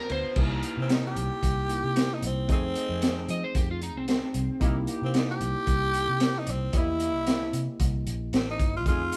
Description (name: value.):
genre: straight-eighth soul blues.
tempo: 113 BPM.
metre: 4/4.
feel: swing 54% on 16ths.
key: unclear.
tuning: A4 = 440 Hz.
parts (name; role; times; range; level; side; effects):
electric slide guitar; second line; 0.0-4.9 s; C4 to Eb5; -35 LUFS; equal; none.
tine electric piano; accompaniment; 0.0-9.2 s; A3 to D#5; -38 LUFS; equal; none.
vintage muted fingered electric bass; bass; 0.1-9.1 s; G1 to F3; -34 LUFS; equal; none.
crunchy breakbeat drum kit; drums; 0.1-9.2 s; crash cymbal, hi-hat, kick drum, ride cymbal, snare drum; -30 LUFS; equal; none.
mellow horn section; sustained chords; 0.4-9.2 s; E3 to Bb4; -43 LUFS; equal; none.
growling tenor saxophone; melody; 0.8-9.2 s; C4 to G4; -32 LUFS; equal; none.
room: light reverb.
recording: band playing live in one room.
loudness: -27 LUFS.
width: mono.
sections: 0.4-9.2 A section.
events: none.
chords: 0.4 C7#9; 2.5 F7#9; 4.6 C7#9.